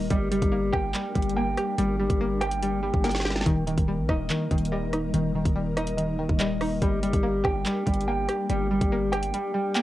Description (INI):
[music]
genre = hip hop, drill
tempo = 143 BPM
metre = 4/4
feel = half-time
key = G minor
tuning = A4 = 444 Hz
[part]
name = string-like resonator pluck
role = accompaniment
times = 0.0-9.8 s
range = Eb3 to G4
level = -31 LUFS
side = equal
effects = chorus, phaser, low-pass filter
[part]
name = ethereal airy pad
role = sustained chords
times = 0.0-9.8 s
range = G3 to Bb4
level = -33 LUFS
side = left 2 dB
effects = ensemble chorus, built-in reverb
[part]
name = mellow electric guitar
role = arpeggios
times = 0.0-9.8 s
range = Eb3 to G5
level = -27 LUFS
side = equal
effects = spring reverb, low-pass filter, tape echo
[part]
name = hard-hitting 808-style bass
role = bass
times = 0.0-9.3 s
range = Eb1 to Bb1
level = -31 LUFS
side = equal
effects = none
[part]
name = drill drum kit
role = drums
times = 0.1-9.8 s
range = handclaps, hi-hat, kick drum, rim click, snare drum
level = -28 LUFS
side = equal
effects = none
[sound]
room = light reverb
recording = home recording on cassette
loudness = -23 LUFS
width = side -15 dB against mid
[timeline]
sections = 0.0-9.8 A section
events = drum fill 3.0-3.5; kick muted 9.3-9.8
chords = 0.1 Gm; 3.5 Eb; 6.8 Gm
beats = | 0.10 0.52 0.94 1.36 | 1.78 2.20 2.62 3.04 | 3.46 3.88 4.30 4.72 | 5.14 5.56 5.98 6.40 | 6.82 7.24 7.66 8.08 | 8.50 8.92 9.34 9.76